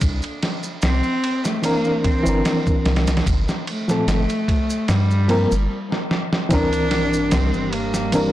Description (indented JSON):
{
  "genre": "trip hop",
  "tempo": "74 BPM",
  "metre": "4/4",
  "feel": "swing 54% on 16ths",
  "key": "unclear",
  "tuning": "A4 = 439 Hz",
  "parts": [
    { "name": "soft dub sub bass", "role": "bass", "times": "0.0-7.5 s", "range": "G1 to G2", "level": "-20 LUFS", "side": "equal", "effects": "tube saturation" },
    { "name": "dusty soul sampler-style drum kit", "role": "drums", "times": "0.0-8.3 s", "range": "kick drum, ride cymbal, snare drum", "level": "-23 LUFS", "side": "equal", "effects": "none" },
    { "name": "maracas", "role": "percussion", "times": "0.0-8.3 s", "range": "none", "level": "-35 LUFS", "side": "right 2 dB", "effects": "none" },
    { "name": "rich cello", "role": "melody", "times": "0.8-8.3 s", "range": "G3 to D4", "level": "-25 LUFS", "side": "equal", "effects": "tape echo" },
    { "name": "reed electric piano", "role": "accompaniment", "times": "1.6-8.3 s", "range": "Bb2 to Bb4", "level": "-22 LUFS", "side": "equal", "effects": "tremolo, vintage 12-bit sampler grit, tape echo" },
    { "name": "deep dark ambient pad", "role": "sustained chords", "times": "7.0-8.3 s", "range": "G3 to G4", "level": "-28 LUFS", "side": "right 1 dB", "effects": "chorus, built-in reverb" },
    { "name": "sub drop", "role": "sound effects", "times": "6.7-8.3 s", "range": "none", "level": "-31 LUFS", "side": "equal", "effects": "none" }
  ],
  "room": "little or no reverb",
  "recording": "blown-out, overdriven recording, overdrive",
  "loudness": "-18 LUFS",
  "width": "side -14 dB against mid",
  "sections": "0.0-6.5 A section; 6.5-8.3 B section",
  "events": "break 5.7-6.5; drum fill 5.9-6.5; impact 6.5-8.3",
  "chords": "0.0 C9; 3.3 Gm11; 6.5 C9"
}